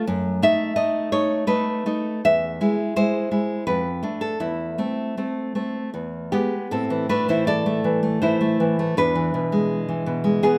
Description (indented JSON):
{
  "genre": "romantic piece for solo classical guitar",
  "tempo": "74-89 BPM",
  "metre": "3/4",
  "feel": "rubato",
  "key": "A minor",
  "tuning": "A4 = 441 Hz",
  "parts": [
    { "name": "nylon-string guitar", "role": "solo", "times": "0.0-10.6 s", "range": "E2 to E5", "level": "-22 LUFS", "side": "equal", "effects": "none" }
  ],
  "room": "moderate recital hall reverb, RT60 1.6 s",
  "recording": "none",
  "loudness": "-23 LUFS",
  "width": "mono",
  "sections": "0.0-6.7 A section; 6.7-10.6 B section",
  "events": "none",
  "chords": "0.1 B7/F#; 2.2 E; 3.7 Dm/F; 4.4 Am/E; 5.9 E; 6.7 Am; 9.0 E7"
}